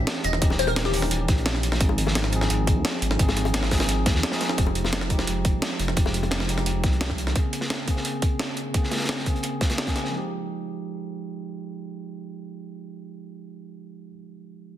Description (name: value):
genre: liquid drum and bass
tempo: 173 BPM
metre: 4/4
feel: straight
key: F minor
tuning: A4 = 442 Hz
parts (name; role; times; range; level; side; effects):
- tine electric piano; accompaniment; 0.0-14.8 s; Db3 to Ab4; -30 LUFS; right 1 dB; ping-pong delay
- dark detuned saw bass; bass; 0.0-7.3 s; Eb1 to Eb2; -26 LUFS; equal; none
- breakbeat sampler-style drum kit; drums; 0.1-10.0 s; hi-hat, snare drum; -28 LUFS; right 1 dB; none
- crunchy breakbeat drum kit; drums; 0.1-10.1 s; hi-hat, snare drum; -31 LUFS; equal; high-pass filter on hats, high-pass filter on snare, high-pass filter on room
- glassy wavetable pluck; melody; 0.2-1.3 s; G4 to Eb5; -29 LUFS; left 4 dB; chorus, tape echo
- electronic kick drum; drums; 0.4-9.9 s; none; -23 LUFS; equal; none
- bongos; percussion; 0.5-6.3 s; none; -34 LUFS; left 7 dB; none
room: light reverb, small room ambience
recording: dense, heavily limited modern master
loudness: -22 LUFS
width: side -12 dB against mid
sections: 0.0-4.6 A section; 4.6-10.1 B section; 10.1-12.9 C section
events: drop 0.0-4.6; break 4.2-4.6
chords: 0.0 Eb7b9; 1.8 Ab6; 4.6 Fm9; 7.4 Bbm9; 10.1 Fm9